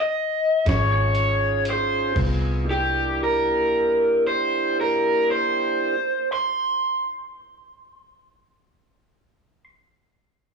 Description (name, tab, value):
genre	slow blues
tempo	38 BPM (dotted quarters)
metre	12/8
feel	straight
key	unclear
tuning	A4 = 441 Hz
part	raw garage guitar	melody	0.0-9.6 s	G4 to C6	-21 LUFS	equal	overdrive
part	tonewheel organ	sustained chords	0.7-6.0 s	Bb3 to Ab4	-28 LUFS	right 2 dB	slow rotary speaker
part	vintage muted fingered electric bass	bass	0.7-5.5 s	Ab1 to C2	-25 LUFS	equal	transformer saturation
part	lo-fi sampler-style drum kit	drums	0.7-2.4 s	crash cymbal, hi-hat, kick drum, snare drum	-28 LUFS	equal	none
room	light reverb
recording	blown-out, overdriven recording, overdrive, small room ambience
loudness	-20 LUFS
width	side -5 dB against mid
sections	0.0-2.2 A section; 2.2-8.4 B section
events	slowing down 0.0-2.2; stop 0.0-0.7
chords	0.0 N.C.; 0.7 Dbadd9; 2.2 C7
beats	0.67 | 2.16 3.72 5.29 6.85